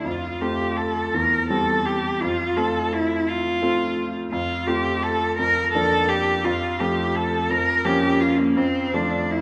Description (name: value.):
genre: classical, romantic duo for cello and grand piano.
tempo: 56 BPM (dotted quarters).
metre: 6/8.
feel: rubato.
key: F major from 4.3 s.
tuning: A4 = 439 Hz.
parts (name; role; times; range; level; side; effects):
rich cello; melody; 0.0-9.4 s; Bb3 to Bb4; -24 LUFS; equal; none.
clear baby grand piano; accompaniment; 0.0-9.4 s; E2 to G4; -26 LUFS; equal; none.
room: wet scoring stage reverb, RT60 1.9 s.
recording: none.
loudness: -22 LUFS.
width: mono.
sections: 0.0-9.4 A section.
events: none.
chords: 0.1 F; 1.1 C/E; 2.2 F; 5.4 Bb/F; 6.4 F; 7.5 Bbm/F; 8.6 F.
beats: | 0.06 1.14 | 2.22 3.29 | 4.32 5.39 | 6.45 7.50 | 8.57.